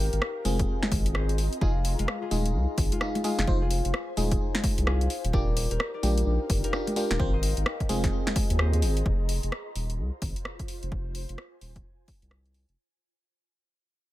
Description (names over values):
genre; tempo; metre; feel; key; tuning
UK garage, two-step garage; 129 BPM; 4/4; swing 62% on 16ths; F dorian; A4 = 442 Hz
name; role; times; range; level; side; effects
concert harp; melody; 0.0-10.6 s; Ab3 to Eb5; -35 LUFS; left 4 dB; ping-pong delay
saturated sub bass; bass; 0.0-12.8 s; Eb1 to Eb2; -27 LUFS; equal; none
ethereal airy pad; texture; 0.0-12.8 s; Eb4 to C6; -39 LUFS; equal; ensemble chorus, built-in reverb, sidechain pumping
house drum kit; drums; 0.1-12.8 s; congas, hi-hat, rim click, snare drum; -31 LUFS; left 1 dB; none
FM electric piano; stabs; 0.5-9.0 s; C4 to C5; -33 LUFS; right 1 dB; chorus, digital delay
electronic kick drum; drums; 0.6-12.2 s; none; -28 LUFS; equal; none
room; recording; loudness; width
little or no reverb; none; -24 LUFS; side -15 dB against mid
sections
0.0-9.1 A section; 9.1-12.8 B section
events
drop 0.0-9.1; fade-out 9.1-12.8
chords
0.0 Ab6; 1.6 Fm7; 5.1 Ebmaj9; 7.2 Ab6; 9.1 Fm7